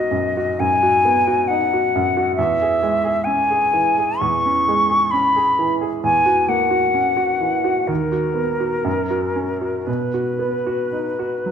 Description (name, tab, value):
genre	classical, romantic duo for flute and grand piano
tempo	57-69 BPM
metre	4/4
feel	rubato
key	B major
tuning	A4 = 440 Hz
part	silver concert flute	melody	0.0-11.5 s	A#4 to C#6	-18 LUFS	left 2 dB	none
part	clear baby grand piano	accompaniment	0.0-11.5 s	B1 to G#4	-21 LUFS	right 2 dB	none
room	moderate recital hall reverb, RT60 1.5 s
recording	minimal, uncompressed stereo recording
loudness	-16 LUFS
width	side -8 dB against mid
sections	0.0-11.5 A section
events	none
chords	0.0 B; 2.4 C#m/E; 6.0 F#7/E; 7.9 B/D#; 8.9 F#; 9.9 B